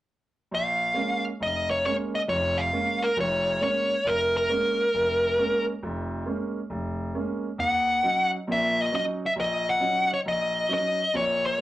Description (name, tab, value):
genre	blues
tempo	136 BPM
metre	4/4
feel	swing 67% on 8ths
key	Bb minor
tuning	A4 = 441 Hz
part	dark smooth lead guitar	melody	0.5-11.6 s	Bb4 to Gb5	-23 LUFS	equal	overdrive
part	bright concert grand piano	accompaniment	0.5-11.6 s	F1 to Eb4	-30 LUFS	right 1 dB	none
room	wet small room reverb, RT60 0.5 s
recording	rough rehearsal-room recording, tube saturation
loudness	-23 LUFS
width	side -15 dB against mid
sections	0.5-11.6 A section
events	none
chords	0.5 Bbm7; 7.6 Ebm7